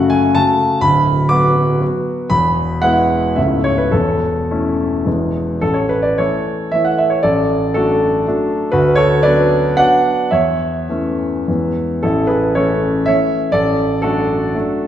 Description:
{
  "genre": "classical, romantic triple-time dance for piano with dotted rhythms",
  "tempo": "100-131 BPM",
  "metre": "3/4",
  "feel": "rubato",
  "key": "A major",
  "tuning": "A4 = 439 Hz",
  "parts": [
    { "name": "warm concert grand piano", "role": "solo", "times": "0.0-14.9 s", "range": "C#1 to D6", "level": "-13 LUFS", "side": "equal", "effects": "none" }
  ],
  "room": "wet recital hall reverb, RT60 1.6 s",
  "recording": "heard from further back in the room",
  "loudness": "-13 LUFS",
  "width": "side -10 dB against mid",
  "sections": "0.0-5.6 A section; 5.6-14.9 B section",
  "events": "none",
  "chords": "0.0 F#m; 0.8 Bm/D; 2.3 E; 3.4 A/C#; 3.9 A/E; 5.1 E; 5.6 A; 7.2 D/A; 8.7 Bm/D; 10.3 A/E; 11.5 E; 12.0 A; 13.5 D/A"
}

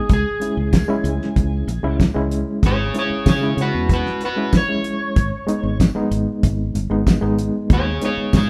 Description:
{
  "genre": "straight-eighth soul blues",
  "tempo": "95 BPM",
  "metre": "4/4",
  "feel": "straight",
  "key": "unclear",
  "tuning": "A4 = 439 Hz",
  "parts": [
    { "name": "electric slide guitar", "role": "melody", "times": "0.0-8.5 s", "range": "F#4 to C#5", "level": "-26 LUFS", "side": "equal", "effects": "none" },
    { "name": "overdriven reed electric piano", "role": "accompaniment", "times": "0.0-8.4 s", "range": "G#3 to E4", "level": "-25 LUFS", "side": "equal", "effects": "fast tremolo" },
    { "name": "fingered electric bass", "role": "bass", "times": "0.1-8.5 s", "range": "G1 to C#3", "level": "-25 LUFS", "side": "equal", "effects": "none" },
    { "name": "damped 70s drum kit", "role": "drums", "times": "0.1-8.5 s", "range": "hi-hat, kick drum, snare drum, tambourine", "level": "-20 LUFS", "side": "equal", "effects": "none" }
  ],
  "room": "light reverb",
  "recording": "band playing live in one room",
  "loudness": "-19 LUFS",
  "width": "mono",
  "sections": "0.0-8.5 A section",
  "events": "electric slide guitar solo 0.0-8.5",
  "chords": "0.1 C#m; 5.2 G#m"
}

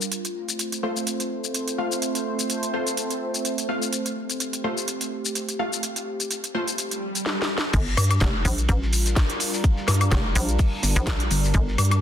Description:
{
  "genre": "bass house",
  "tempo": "126 BPM",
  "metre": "4/4",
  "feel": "swing 55% on 16ths",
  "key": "G minor",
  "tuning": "A4 = 440 Hz",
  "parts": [
    { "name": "sweeping resonant pad", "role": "sustained chords", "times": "0.0-12.0 s", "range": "G3 to C5", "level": "-29 LUFS", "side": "right 2 dB", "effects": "chorus, sidechain pumping" },
    { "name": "garage drum kit", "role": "drums", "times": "0.0-12.0 s", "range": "crash cymbal, hi-hat, shaker, snare drum, woodblock", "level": "-26 LUFS", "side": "left 1 dB", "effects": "none" },
    { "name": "orchestra-hit-like synth stab", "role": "stabs", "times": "0.8-6.6 s", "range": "A3 to F5", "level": "-31 LUFS", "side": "left 1 dB", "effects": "built-in reverb, sidechain pumping, dub echo" },
    { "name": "swell", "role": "sound effects", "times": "6.9-7.7 s", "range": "none", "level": "-31 LUFS", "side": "left 1 dB", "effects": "none" },
    { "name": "hollow knocking FM bass", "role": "bass", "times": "7.7-11.8 s", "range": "F1 to Bb1", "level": "-23 LUFS", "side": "equal", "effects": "tube saturation, sidechain pumping" },
    { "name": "cloth-damped thuddy drum kit", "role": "drums", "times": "7.7-12.0 s", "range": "hi-hat, ride cymbal, snare drum", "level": "-37 LUFS", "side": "right 2 dB", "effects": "sidechain pumping on cymbals, high-pass filter on cymbals, sidechain pumping on hats, high-pass filter on hats, high-pass filter on snare, high-pass filter on room" },
    { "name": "electronic kick drum", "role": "drums", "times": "7.7-11.7 s", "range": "none", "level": "-22 LUFS", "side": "equal", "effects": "none" },
    { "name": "pulsing pluck wobble bass", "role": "bass", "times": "8.0-12.0 s", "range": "G1 to G2", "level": "-20 LUFS", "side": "equal", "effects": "chorus, tube saturation, sidechain pumping" }
  ],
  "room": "light reverb, digital ambience",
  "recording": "dense, heavily limited modern master",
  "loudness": "-22 LUFS",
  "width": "side -10 dB against mid",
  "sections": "0.0-7.7 A section; 7.7-12.0 B section",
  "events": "swell 6.9-7.7; drum fill 7.3-7.7; drop 7.7-12.0",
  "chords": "0.1 F; 7.7 Gm7"
}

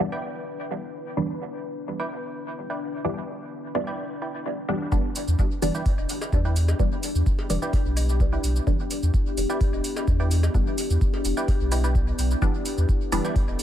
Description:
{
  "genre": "dub techno",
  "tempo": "128 BPM",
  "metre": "4/4",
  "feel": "straight",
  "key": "E minor",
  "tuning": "A4 = 440 Hz",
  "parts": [
    { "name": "deep dark ambient pad", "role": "sustained chords", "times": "0.0-13.6 s", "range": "B3 to B4", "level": "-32 LUFS", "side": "left 3 dB", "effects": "chorus, built-in reverb, sidechain pumping" },
    { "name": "filtered dub chord stab", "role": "stabs", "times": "0.0-13.4 s", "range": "E3 to D4", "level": "-30 LUFS", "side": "equal", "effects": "phaser, sidechain pumping, dub echo" },
    { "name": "wavetable chord stab", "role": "riff", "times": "0.1-13.3 s", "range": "E4 to G5", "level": "-35 LUFS", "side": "right 2 dB", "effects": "sidechain pumping, dub echo" },
    { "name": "pure sine sub bass", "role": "bass", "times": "4.9-13.6 s", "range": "E1 to E2", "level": "-23 LUFS", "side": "equal", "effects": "sidechain pumping" },
    { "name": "electronic cabasa and hi-hat", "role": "drums", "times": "4.9-13.6 s", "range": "none", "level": "-35 LUFS", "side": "right 2 dB", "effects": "overdrive, low-pass filter on perc, low-pass filter on hats, low-pass filter on room, dub echo" },
    { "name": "electronic kick drum", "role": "drums", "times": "4.9-13.5 s", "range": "none", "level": "-24 LUFS", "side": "equal", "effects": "overdrive" },
    { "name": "woodblock and cowbell", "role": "percussion", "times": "6.0-13.6 s", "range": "none", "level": "-40 LUFS", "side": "left 3 dB", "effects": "overdrive, sidechain pumping on perc, dub echo" }
  ],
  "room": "light reverb, digital ambience",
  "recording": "echo-heavy mix",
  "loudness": "-22 LUFS",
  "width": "side -11 dB against mid",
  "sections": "0.0-4.9 A section; 4.9-13.6 B section",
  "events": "filter sweep on ambient pad 0.0-4.9",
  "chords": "0.0 Em7"
}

